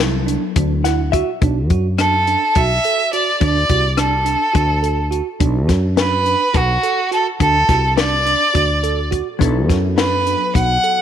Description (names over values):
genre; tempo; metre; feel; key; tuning
progressive instrumental, band music in an uneven meter; 210 BPM (eighths); 7/8; straight; unclear; A4 = 440 Hz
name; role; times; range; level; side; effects
hollow-body jazz guitar; accompaniment; 0.0-1.4, 9.4-11.0 s; F#3 to F#5; -24 LUFS; left 14 dB; none
bell-like tine electric piano; arpeggios; 0.0-11.0 s; D4 to A4; -24 LUFS; right 12 dB; none
woody fretless electric bass; bass; 0.0-10.8 s; B1 to F#2; -19 LUFS; equal; none
compact cocktail drum kit; drums; 0.3-11.0 s; hi-hat, kick drum, rim click, snare drum; -19 LUFS; left 3 dB; none
clear violin; melody; 2.0-11.0 s; F#4 to F#5; -16 LUFS; right 1 dB; none
room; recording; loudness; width
light reverb, small room reverb; 1960s-style stereo with parts hard left and right; -14 LUFS; side -9 dB against mid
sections
0.0-1.4 A section; 1.4-11.0 B section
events
hollow-body jazz guitar fill 0.6-1.4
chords
0.0 D7; 1.4 Bm7; 3.4 D7; 5.4 Bm; 7.4 D7; 9.4 Bm7